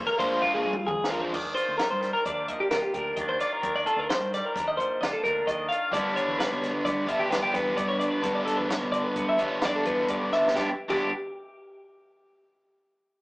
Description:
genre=math rock and midwest emo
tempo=130 BPM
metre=5/4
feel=straight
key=unclear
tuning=A4 = 440 Hz
part: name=twelve-string electric guitar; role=arpeggios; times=0.0-11.1 s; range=F4 to F5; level=-26 LUFS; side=equal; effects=spring reverb
part: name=growling fingered electric bass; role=bass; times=0.0-11.1 s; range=G1 to B2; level=-39 LUFS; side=equal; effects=overdrive
part: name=biting overdriven guitar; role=riff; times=0.2-1.3, 5.9-11.1 s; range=G2 to F4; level=-30 LUFS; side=equal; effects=none
part: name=compact cocktail drum kit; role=drums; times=0.2-11.0 s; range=crash cymbal, hi-hat, kick drum, ride cymbal, snare drum, toms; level=-33 LUFS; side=equal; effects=none
part: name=twangy electric guitar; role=accompaniment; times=1.3-11.1 s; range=G2 to F4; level=-33 LUFS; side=equal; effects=none
room=moderate studio reverb, RT60 0.6 s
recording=rough rehearsal-room recording, small speaker sound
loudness=-24 LUFS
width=side -23 dB against mid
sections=0.0-1.3 A section; 1.3-10.6 B section; 10.6-12.9 C section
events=drum fill 0.4-1.3, 10.3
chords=0.0 Bb9; 1.3 Ebmaj9; 5.9 G6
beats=0.41 0.87 | 1.33 1.79 2.25 2.71 3.17 | 3.63 4.10 4.56 5.02 5.48 | 5.94 6.40 6.86 7.32 7.78 | 8.24 8.71 9.17 9.63 10.09 | 10.55 11.02

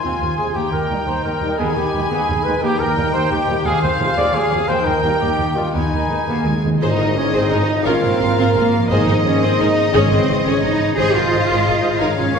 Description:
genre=cinematic, heroic adventure film score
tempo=116 BPM (dotted quarters)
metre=6/8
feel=straight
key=Eb major, Ab major from 6.8 s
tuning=A4 = 440 Hz
part: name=warm symphonic violin section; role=melody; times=0.0-12.4 s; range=Eb5 to Ab5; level=-26 LUFS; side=left 3 dB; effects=none
part: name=bright oboe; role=second line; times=0.0-6.6 s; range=F5 to Ab5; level=-27 LUFS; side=right 2 dB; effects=none
part: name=clear clarinet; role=second line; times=0.0-12.4 s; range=Eb4 to Eb5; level=-28 LUFS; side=left 2 dB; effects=none
part: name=small flute group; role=second line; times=0.0-12.4 s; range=Ab4 to C6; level=-28 LUFS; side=left 3 dB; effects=none
part: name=warm studio violin section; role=second line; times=0.0-12.4 s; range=C4 to Db5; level=-28 LUFS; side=left 2 dB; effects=none
part: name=warm symphonic viola section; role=accompaniment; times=0.0-12.4 s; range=C3 to Ab4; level=-26 LUFS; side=equal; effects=none
part: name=concert harp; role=arpeggios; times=0.0-12.4 s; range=Ab2 to Bb5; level=-27 LUFS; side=left 5 dB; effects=none
part: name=mellow trumpet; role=stabs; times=0.0-12.4 s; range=Eb4 to Eb5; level=-22 LUFS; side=right 2 dB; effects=none
part: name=dark symphonic double bass section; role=bass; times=0.0-12.4 s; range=Ab1 to Eb2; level=-24 LUFS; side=right 2 dB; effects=none
part: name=warm symphonic cello section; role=bass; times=0.0-12.4 s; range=Eb2 to Ab4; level=-22 LUFS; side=right 2 dB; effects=none
part: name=dark French horn section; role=sustained chords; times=0.4-12.4 s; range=Ab3 to Eb5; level=-29 LUFS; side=left 5 dB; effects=none
part: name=warm trombone section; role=sustained chords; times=0.4-12.4 s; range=C3 to Bb3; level=-29 LUFS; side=right 2 dB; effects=none
part: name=timpani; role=percussion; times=3.7-6.7, 8.9-10.4 s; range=Ab2 to Eb3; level=-25 LUFS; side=equal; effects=none
part: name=tam-tam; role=percussion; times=6.8-8.2 s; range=none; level=-29 LUFS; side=left 2 dB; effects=none
room=wet recital hall reverb, RT60 1.4 s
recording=recorded in a church or concert hall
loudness=-15 LUFS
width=side -6 dB against mid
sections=0.0-6.8 A section; 6.8-12.4 B section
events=timpani fill 5.7-6.8; band accent 6.8-7.2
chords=0.0 Fm/Eb; 0.6 Eb; 1.6 Abm/Eb; 2.6 Eb; 3.7 Fm/Eb; 4.7 Eb; 5.7 Abm/Eb; 6.8 Ab; 7.9 Bbm/Ab; 8.9 Ab; 9.9 Dbmadd9/Ab; 11.0 Ab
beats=0.04 | 0.55 1.07 | 1.59 2.11 | 2.62 3.14 | 3.65 4.17 | 4.69 5.21 | 5.74 6.28 | 6.81 7.34 | 7.86 8.38 | 8.90 9.42 | 9.93 10.45 | 10.96 11.48 | 12.00

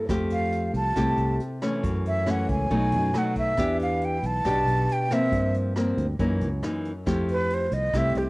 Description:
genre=bossa nova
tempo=138 BPM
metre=4/4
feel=straight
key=unclear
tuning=A4 = 440 Hz
part: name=nylon-string guitar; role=accompaniment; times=0.0-8.3 s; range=F#2 to G4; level=-26 LUFS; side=left 1 dB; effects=cassette tape
part: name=fingered electric bass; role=bass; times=0.1-8.3 s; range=B1 to G2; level=-28 LUFS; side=equal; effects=none
part: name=vintage brush drum kit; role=drums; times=0.1-8.3 s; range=hi-hat, kick drum, rim click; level=-36 LUFS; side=equal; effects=cassette tape
part: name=breathy mellow silver concert flute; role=melody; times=0.3-8.3 s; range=G4 to A5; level=-26 LUFS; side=right 1 dB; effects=cassette tape
room=light reverb, small room ambience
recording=home recording on cassette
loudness=-22 LUFS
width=side -22 dB against mid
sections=0.0-8.3 A section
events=flute solo 0.0-8.3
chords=0.1 Fmaj9; 1.8 F#m7; 2.7 B7; 3.6 Em7; 5.3 Gm7; 6.2 F#6; 7.1 Fmaj9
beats=| 0.09 0.52 0.96 1.39 | 1.83 2.27 2.70 3.14 | 3.57 4.01 4.45 4.88 | 5.32 5.75 6.19 6.63 | 7.06 7.50 7.94

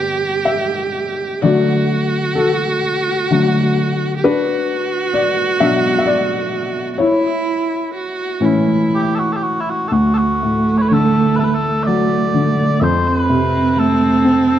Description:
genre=celtic folk, Celtic slow air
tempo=63 BPM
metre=3/4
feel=uneven beats, rubato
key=D major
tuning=A4 = 440 Hz
part: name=rich viola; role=second line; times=0.0-14.6 s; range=A3 to G4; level=-19 LUFS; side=right 4 dB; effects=none
part: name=felt-muted upright piano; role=accompaniment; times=0.0-14.6 s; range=D2 to E5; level=-16 LUFS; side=left 2 dB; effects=none
part: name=mellow small bagpipes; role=melody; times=8.9-14.6 s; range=E4 to E5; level=-19 LUFS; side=equal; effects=none
room=moderate scoring stage reverb, RT60 1.7 s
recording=dark, warm production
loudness=-14 LUFS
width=side -10 dB against mid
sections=0.0-9.9 A section; 9.9-14.6 B section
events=felt piano solo 0.0-9.9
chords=0.0 G; 1.4 D; 4.2 Bm; 7.0 A; 9.9 D; 12.8 F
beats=0.46 | 1.42 2.37 3.31 | 4.23 5.15 6.06 | 6.99 7.93 8.90 | 9.91 10.90 11.87 | 12.82 13.77

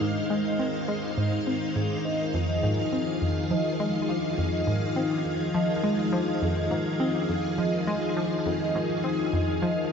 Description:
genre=ambient, sequencer-driven space music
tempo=103 BPM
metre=4/4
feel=straight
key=unclear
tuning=A4 = 444 Hz
part: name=string machine, full ensemble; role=sustained chords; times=0.0-9.9 s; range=Eb3 to F5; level=-28 LUFS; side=left 1 dB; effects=ensemble chorus
part: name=vibraphone with medium mallets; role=arpeggios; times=0.0-9.8 s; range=D4 to Eb5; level=-30 LUFS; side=left 1 dB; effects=auto-pan, tape echo, shimmer reverb
part: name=analog pluck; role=riff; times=0.0-9.7 s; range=F2 to C4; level=-29 LUFS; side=equal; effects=chorus, tape echo
room=wet lush hall reverb, RT60 2.9 s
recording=dark, warm production, nothing above 7.9 kHz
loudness=-24 LUFS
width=side -6 dB against mid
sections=0.0-9.9 A section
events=filter sweep on synth arpeggio sound 0.0-9.9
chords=0.0 Ab6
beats=| 0.01 0.59 1.18 1.76 | 2.34 2.92 3.51 4.09 | 4.67 5.25 5.84 6.42 | 7.00 7.58 8.17 8.75 | 9.33 9.91

